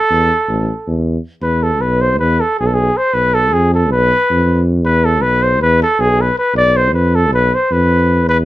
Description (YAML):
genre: balkan folk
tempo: 316 BPM (eighths)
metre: 9/8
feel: straight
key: unclear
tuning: A4 = 438 Hz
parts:
  - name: dark trumpet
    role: melody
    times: 0.0-8.4 s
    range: G#4 to D5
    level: -14 LUFS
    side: equal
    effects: none
  - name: mellow tuba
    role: bass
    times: 0.1-8.4 s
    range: A1 to F2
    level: -15 LUFS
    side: equal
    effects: none
room: light reverb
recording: none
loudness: -12 LUFS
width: side -15 dB against mid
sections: 0.0-1.4 A section; 1.4-8.4 B section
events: none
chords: 0.0 A5; 1.4 E5; 3.1 F(b5, no3)/Cb; 4.8 E5; 6.6 B(b5, no3)